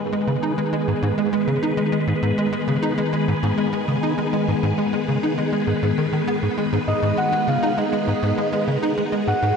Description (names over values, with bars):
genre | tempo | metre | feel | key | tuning
ambient, sequencer-driven space music | 100 BPM | 4/4 | straight | G# minor | A4 = 440 Hz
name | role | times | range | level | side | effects
phased string machine | sustained chords | 0.0-9.6 s | D#3 to B4 | -22 LUFS | equal | ensemble chorus, phaser
tight sequencer bass | riff | 0.0-9.5 s | G#2 to D#4 | -23 LUFS | equal | ensemble chorus, ping-pong delay
soft octave-layered synth lead | melody | 6.9-9.6 s | D#5 to F#5 | -23 LUFS | left 1 dB | chorus, ping-pong delay
room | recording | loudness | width
wet lush hall reverb, RT60 2.8 s | none | -19 LUFS | side -6 dB against mid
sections
0.0-9.6 A section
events
none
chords
0.0 G#m